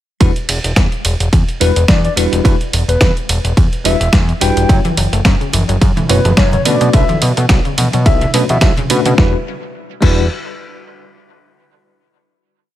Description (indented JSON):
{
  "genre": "nu-disco, nu disco",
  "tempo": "107 BPM",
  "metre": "4/4",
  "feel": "swing 55% on 16ths",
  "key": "E dorian",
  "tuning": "A4 = 442 Hz",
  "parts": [
    { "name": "bell-like tine electric piano", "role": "accompaniment", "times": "0.2-10.2 s", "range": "G3 to C#5", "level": "-20 LUFS", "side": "equal", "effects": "fast stereo tremolo, sidechain pumping, dub echo" },
    { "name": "fat analog bass", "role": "bass", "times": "0.2-10.3 s", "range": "E1 to B2", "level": "-15 LUFS", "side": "equal", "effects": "none" },
    { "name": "dusty soul sampler-style drum kit", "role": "drums", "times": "0.2-10.1 s", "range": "crash cymbal, hi-hat, ride cymbal, snare drum", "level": "-18 LUFS", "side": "right 1 dB", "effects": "studio reverb" },
    { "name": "electronic kick drum", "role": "drums", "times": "0.2-10.1 s", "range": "none", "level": "-12 LUFS", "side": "equal", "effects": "studio reverb" },
    { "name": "soft octave-layered synth lead", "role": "melody", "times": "1.6-8.7 s", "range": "B4 to G5", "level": "-20 LUFS", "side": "left 2 dB", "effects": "chorus, ping-pong delay" },
    { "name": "wide unison pluck", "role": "arpeggios", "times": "4.7-10.3 s", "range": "C#3 to C#4", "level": "-23 LUFS", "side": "left 4 dB", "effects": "phaser, sidechain pumping, ping-pong delay" },
    { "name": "congas", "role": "percussion", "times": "4.8-8.9 s", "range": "none", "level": "-22 LUFS", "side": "right 2 dB", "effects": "none" }
  ],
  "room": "little or no reverb",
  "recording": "none",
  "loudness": "-11 LUFS",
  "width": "side -13 dB against mid",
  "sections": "0.2-9.2 drop; 9.2-11.4 final chord",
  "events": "drop 0.2-9.2",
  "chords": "0.2 Em9; 4.7 F#m7; 6.7 Bm9; 9.2 Em9",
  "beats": "| 0.21 0.77 1.33 1.89 | 2.45 3.01 3.57 4.13 | 4.69 5.25 5.82 6.38 | 6.94 7.50 8.06 8.62 | 9.18 9.74"
}